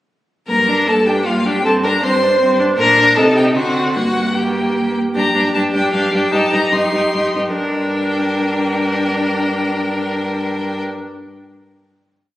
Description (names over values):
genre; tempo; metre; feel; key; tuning
quick classical-period movement for string quartet; 138-161 BPM; 3/4; rubato; G minor; A4 = 440 Hz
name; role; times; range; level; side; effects
clear violin; melody; 0.5-10.8 s; F5 to C6; -20 LUFS; left 3 dB; none
rich violin; second line; 0.5-10.8 s; F4 to C5; -18 LUFS; equal; none
rich viola; accompaniment; 0.5-10.8 s; Bb3 to Eb4; -19 LUFS; equal; none
clear cello; bass; 0.5-10.8 s; G2 to D3; -22 LUFS; right 1 dB; none
room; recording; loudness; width
wet recital hall reverb, RT60 1.7 s; recorded on a phone in the room, club reverb; -14 LUFS; side -15 dB against mid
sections
0.5-5.1 A section; 5.1-7.6 coda; 7.6-10.0 final chord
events
slowing down 4.5-7.6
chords
0.5 Gm; 1.7 Gmadd11; 2.8 Bb; 3.2 Adim/C; 3.6 D7; 3.9 Gm; 6.3 Cm/G; 7.6 Gm